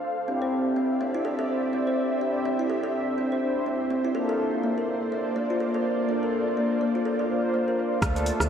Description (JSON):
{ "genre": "afro house", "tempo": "124 BPM", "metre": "4/4", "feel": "swing 58% on 16ths", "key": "unclear", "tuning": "A4 = 439 Hz", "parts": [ { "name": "ethereal airy pad", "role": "sustained chords", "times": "0.0-8.5 s", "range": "Bb3 to D6", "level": "-29 LUFS", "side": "equal", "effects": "ensemble chorus, built-in reverb, sidechain pumping" }, { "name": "deep house drum kit", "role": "drums", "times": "0.0-8.5 s", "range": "hi-hat, rim click, shaker", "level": "-28 LUFS", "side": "right 1 dB", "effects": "low-pass filter on perc, low-pass filter on snare, low-pass filter on hats" }, { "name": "kalimba", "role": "arpeggios", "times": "0.3-8.3 s", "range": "Bb3 to D5", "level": "-29 LUFS", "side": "equal", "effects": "sidechain pumping, analog delay" }, { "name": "mellow synth brass", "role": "stabs", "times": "0.3-8.5 s", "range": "A3 to C5", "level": "-28 LUFS", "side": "left 1 dB", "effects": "chorus, cassette tape, sidechain pumping, analog delay" }, { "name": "woody FM bass", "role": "bass", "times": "8.0-8.5 s", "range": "D2", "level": "-28 LUFS", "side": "equal", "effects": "tube saturation, sidechain pumping" }, { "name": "electronic kick drum", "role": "drums", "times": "8.0-8.1 s", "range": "none", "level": "-27 LUFS", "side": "equal", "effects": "none" } ], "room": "wet lush hall reverb, RT60 1.8 s", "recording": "dreamy mix soaked in reverb", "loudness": "-24 LUFS", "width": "side -8 dB against mid", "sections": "0.0-8.0 A section", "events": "filter sweep on analog polysynth 0.0-8.0", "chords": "0.3 Cadd9; 4.1 Bbmaj7", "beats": "| 0.28 0.76 1.25 1.73 | 2.21 2.70 3.18 3.67 | 4.15 4.63 5.12 5.60 | 6.08 6.57 7.05 7.54 | 8.02" }